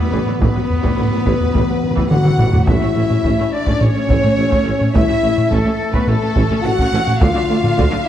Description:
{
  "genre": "cinematic, epic orchestral film score",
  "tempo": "106 BPM",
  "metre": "4/4",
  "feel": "straight",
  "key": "A major",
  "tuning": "A4 = 440 Hz",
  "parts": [
    { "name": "warm symphonic violin section", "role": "melody", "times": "0.0-8.1 s", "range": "A4 to F#5", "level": "-28 LUFS", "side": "left 4 dB", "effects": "none" },
    { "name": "warm symphonic violin section", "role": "second line", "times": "0.0-8.1 s", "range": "A4 to F#5", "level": "-27 LUFS", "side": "left 2 dB", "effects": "none" },
    { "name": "warm symphonic viola section", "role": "accompaniment", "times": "0.0-8.0 s", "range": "D3 to D4", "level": "-25 LUFS", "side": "right 2 dB", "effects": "none" },
    { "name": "mellow French horn section", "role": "sustained chords", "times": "0.0-8.1 s", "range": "A3 to F#4", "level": "-20 LUFS", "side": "left 4 dB", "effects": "none" },
    { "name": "clear trumpet", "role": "stabs", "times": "0.0-2.1 s", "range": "B3", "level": "-28 LUFS", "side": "right 2 dB", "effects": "none" },
    { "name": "warm symphonic cello section", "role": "bass", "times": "0.0-8.0 s", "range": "A2 to D3", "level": "-24 LUFS", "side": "right 2 dB", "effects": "none" },
    { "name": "timpani", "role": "percussion", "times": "0.0-2.6 s", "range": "A2", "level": "-24 LUFS", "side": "equal", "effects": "none" },
    { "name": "warm symphonic double bass section", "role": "bass", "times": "0.1-7.8 s", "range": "A1 to D2", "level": "-23 LUFS", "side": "right 3 dB", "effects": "none" },
    { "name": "warm tuba", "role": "bass", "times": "0.1-7.8 s", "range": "A1 to D2", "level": "-25 LUFS", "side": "right 3 dB", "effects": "none" },
    { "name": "solo taiko drums", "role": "drums", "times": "0.4-8.1 s", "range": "none", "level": "-18 LUFS", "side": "equal", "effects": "none" },
    { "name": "small flute group", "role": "second line", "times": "2.1-8.0 s", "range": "A4 to F#5", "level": "-24 LUFS", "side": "right 1 dB", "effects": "none" }
  ],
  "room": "moderate scoring stage reverb, RT60 1.7 s",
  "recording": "dark, warm production",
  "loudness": "-13 LUFS",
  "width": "side -10 dB against mid",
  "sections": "0.0-2.7 A section; 2.7-8.1 B section",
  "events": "timpani fill 0.0-2.7; drum fill 2.1-2.7",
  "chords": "0.0 Em/A; 2.7 A; 7.2 Dm"
}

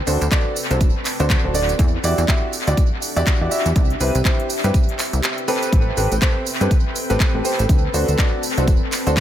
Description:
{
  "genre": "piano house",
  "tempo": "122 BPM",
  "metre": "4/4",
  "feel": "swing 59% on 16ths",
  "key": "unclear",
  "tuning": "A4 = 439 Hz",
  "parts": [
    { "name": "granular cloud pad", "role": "texture", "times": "0.0-9.2 s", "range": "C4 to G5", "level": "-28 LUFS", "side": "equal", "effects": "built-in reverb, sidechain pumping" },
    { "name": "warm upright piano", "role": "riff", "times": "0.1-9.2 s", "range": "C4 to E5", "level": "-23 LUFS", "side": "equal", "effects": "sidechain pumping, tape echo" },
    { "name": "plucky analog bass", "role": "bass", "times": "0.1-9.2 s", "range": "D1 to G2", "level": "-20 LUFS", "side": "equal", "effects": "sidechain pumping" },
    { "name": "house drum kit", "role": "drums", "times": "0.1-9.2 s", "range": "handclaps, hi-hat, tambourine", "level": "-24 LUFS", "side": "right 1 dB", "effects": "small room ambience, tape echo" },
    { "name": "electronic kick drum", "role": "drums", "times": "0.3-9.2 s", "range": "none", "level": "-17 LUFS", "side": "equal", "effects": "small room ambience" }
  ],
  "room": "digital ambience",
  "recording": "echo-heavy mix",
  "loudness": "-16 LUFS",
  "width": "side -11 dB against mid",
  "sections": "0.0-9.2 A section",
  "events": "kick drops out 5.2-5.7",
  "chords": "0.0 D7; 1.8 Em9; 3.8 Cmaj7; 5.7 Am9; 7.7 D7"
}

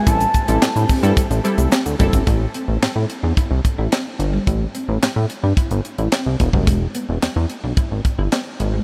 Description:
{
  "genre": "early-eighties boogie funk",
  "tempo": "109 BPM",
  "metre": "4/4",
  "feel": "straight",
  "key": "A dorian",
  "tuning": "A4 = 440 Hz",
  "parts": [
    { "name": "gliding portamento lead", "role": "melody", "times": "0.0-0.9 s", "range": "A5", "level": "-27 LUFS", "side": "equal", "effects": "chorus, analog delay" },
    { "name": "phased string machine", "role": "sustained chords", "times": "0.0-2.3 s", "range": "A3 to G4", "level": "-38 LUFS", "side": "equal", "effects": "none" },
    { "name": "clean electric guitar", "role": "riff", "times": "0.0-8.8 s", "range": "G3 to E4", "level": "-30 LUFS", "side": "equal", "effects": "lush chorus" },
    { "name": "funky polysynth comp", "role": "accompaniment", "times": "0.1-2.2 s", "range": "G3 to A4", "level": "-28 LUFS", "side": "equal", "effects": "chorus" },
    { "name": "chorused synth bass", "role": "bass", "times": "0.1-8.8 s", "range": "E1 to A2", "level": "-21 LUFS", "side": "equal", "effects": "none" },
    { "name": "tight funk drum kit", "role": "drums", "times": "0.1-8.7 s", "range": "handclaps, hi-hat, kick drum, snare drum", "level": "-22 LUFS", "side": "equal", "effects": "none" },
    { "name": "egg shaker", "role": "percussion", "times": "0.1-2.3 s", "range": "none", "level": "-40 LUFS", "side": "equal", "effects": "none" }
  ],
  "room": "moderate huge ambient reverb, RT60 7.9 s",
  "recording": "dreamy mix soaked in reverb",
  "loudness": "-19 LUFS",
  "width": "mono",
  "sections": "0.0-2.3 A section; 2.3-8.8 B section",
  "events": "none",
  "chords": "0.1 Am7; 6.7 E"
}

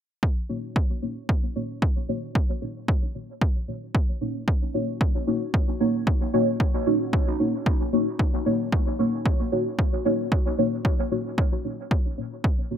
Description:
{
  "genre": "dub techno",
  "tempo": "113 BPM",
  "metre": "4/4",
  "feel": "straight",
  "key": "Eb minor",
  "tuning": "A4 = 439 Hz",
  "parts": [
    { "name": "electronic kick drum", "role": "drums", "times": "0.2-12.6 s", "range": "none", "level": "-22 LUFS", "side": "equal", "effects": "overdrive" },
    { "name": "deep mellow chord stab", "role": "stabs", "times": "0.5-12.8 s", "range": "Bb3 to Db5", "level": "-26 LUFS", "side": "equal", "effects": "chorus, phaser, sidechain pumping, dub echo" }
  ],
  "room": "light reverb",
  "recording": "bright 1980s-style digital production",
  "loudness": "-22 LUFS",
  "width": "side -9 dB against mid",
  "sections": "0.2-12.8 A section",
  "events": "none",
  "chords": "0.2 Ebm7"
}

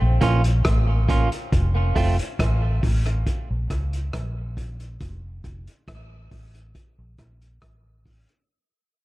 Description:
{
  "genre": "dub reggae",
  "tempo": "69 BPM",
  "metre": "4/4",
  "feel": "straight",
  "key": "Bb harmonic minor",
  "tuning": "A4 = 440 Hz",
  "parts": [
    { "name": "vintage muted fingered electric bass", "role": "bass", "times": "0.0-8.2 s", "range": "F1 to Db2", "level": "-22 LUFS", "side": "equal", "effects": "none" },
    { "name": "clean electric guitar", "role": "accompaniment", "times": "0.2-2.2 s", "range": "A3 to F4", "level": "-28 LUFS", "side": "right 4 dB", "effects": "dub echo" },
    { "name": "vintage drum kit", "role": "drums", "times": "0.2-8.5 s", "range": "hi-hat, kick drum, rim click", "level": "-26 LUFS", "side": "equal", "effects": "none" }
  ],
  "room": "small room ambience",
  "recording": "echo-heavy mix",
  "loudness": "-20 LUFS",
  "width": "side -18 dB against mid",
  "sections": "0.0-8.5 A section",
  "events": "fade-out 0.0-8.5; break 1.5-8.5",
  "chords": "0.0 Bbm; 1.5 F; 3.3 Bbm; 5.0 F; 6.7 N.C."
}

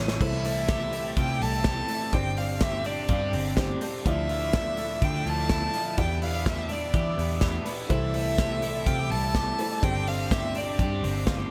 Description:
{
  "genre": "jangly indie pop",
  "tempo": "125 BPM",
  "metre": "4/4",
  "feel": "straight",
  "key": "unclear",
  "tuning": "A4 = 441 Hz",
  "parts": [
    { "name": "overdriven electric guitar", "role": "accompaniment", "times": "0.0-11.5 s", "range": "E2 to A4", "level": "-40 LUFS", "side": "equal", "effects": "phaser, tape echo" },
    { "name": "twelve-string electric guitar", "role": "arpeggios", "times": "0.0-11.5 s", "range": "E3 to G4", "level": "-37 LUFS", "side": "equal", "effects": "tape echo" },
    { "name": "vintage muted picked electric bass", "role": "bass", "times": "0.0-11.4 s", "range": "G1 to E3", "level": "-33 LUFS", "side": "equal", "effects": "none" },
    { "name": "modern studio drum kit", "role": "drums", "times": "0.1-11.4 s", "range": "crash cymbal, hi-hat, kick drum, ride cymbal, snare drum", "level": "-31 LUFS", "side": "equal", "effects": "tape echo" },
    { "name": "warm violin", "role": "melody", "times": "0.2-11.3 s", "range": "D5 to A5", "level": "-34 LUFS", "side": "equal", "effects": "tape echo" },
    { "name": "dark upright piano", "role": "accompaniment", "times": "0.2-11.5 s", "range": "D4 to D5", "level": "-41 LUFS", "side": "equal", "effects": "none" },
    { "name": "warm studio string section", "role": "sustained chords", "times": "0.2-11.5 s", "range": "C3 to E5", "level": "-42 LUFS", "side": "equal", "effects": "none" }
  ],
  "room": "light reverb, small room ambience",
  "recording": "echo-heavy mix",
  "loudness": "-27 LUFS",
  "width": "mono",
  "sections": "0.2-11.5 A section",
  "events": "drum fill 0.0",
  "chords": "0.2 C6; 2.1 Gsus4; 4.1 Dmadd9; 6.0 Em7; 7.9 C6; 9.8 Gsus4"
}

